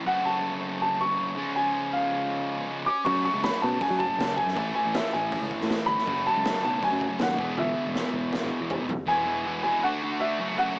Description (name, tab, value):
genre	indie rock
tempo	160 BPM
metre	4/4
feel	straight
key	unclear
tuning	A4 = 442 Hz
part	thick fuzz guitar	riff	0.0-10.8 s	E2 to A4	-29 LUFS	equal	distortion, cassette tape
part	clear upright piano	melody	0.1-10.8 s	E5 to D6	-26 LUFS	equal	cassette tape, analog delay
part	picked electric bass	bass	3.1-9.0 s	E1 to F#3	-31 LUFS	equal	none
part	raw garage drum kit	drums	3.1-9.0 s	hi-hat, kick drum, snare drum, toms	-33 LUFS	equal	cassette tape
room	light reverb, small room ambience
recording	home recording on cassette, small speaker sound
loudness	-24 LUFS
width	side -26 dB against mid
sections	0.0-9.1 A section; 9.1-10.8 B section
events	drum fill 7.6-9.1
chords	0.1 F#m; 1.4 C#; 3.1 F#m; 4.6 Amaj7; 6.1 F#m; 7.4 E; 9.8 D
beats	| 0.07 0.44 0.81 1.19 | 1.57 1.94 2.32 2.69 | 3.07 3.44 3.82 4.19 | 4.57 4.95 5.32 5.70 | 6.07 6.45 6.83 7.20 | 7.58 7.95 8.33 8.71 | 9.08 9.46 9.83 10.21 | 10.59